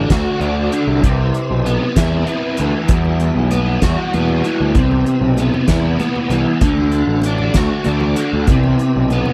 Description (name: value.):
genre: psychedelic rock.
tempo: 64 BPM (dotted quarters).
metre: 6/8.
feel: straight.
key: unclear.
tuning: A4 = 437 Hz.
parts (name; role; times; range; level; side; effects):
tonewheel organ; sustained chords; 0.0-9.3 s; G3 to B4; -29 LUFS; equal; slow rotary speaker, overdrive, chorus vibrato.
overdriven electric guitar; riff; 0.0-9.3 s; E2 to F#4; -20 LUFS; equal; rotary speaker.
fuzz picked electric bass; bass; 0.0-9.2 s; A1 to E2; -20 LUFS; equal; overdrive.
soft-mallet drum kit; drums; 0.1-9.3 s; hi-hat, kick drum, snare drum; -20 LUFS; equal; none.
congas; percussion; 2.9-9.3 s; none; -30 LUFS; equal; none.
room: small room ambience.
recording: dry, close 1970s-style studio recording.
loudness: -16 LUFS.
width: mono.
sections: 0.0-9.3 A section.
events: none.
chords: 0.0 D; 1.0 Cmaj7; 2.9 Emadd9; 4.8 Cmaj7; 6.6 D; 8.5 Cmaj7.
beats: 0.12 | 1.05 1.98 | 2.91 3.84 | 4.77 5.70 | 6.63 7.56 | 8.49.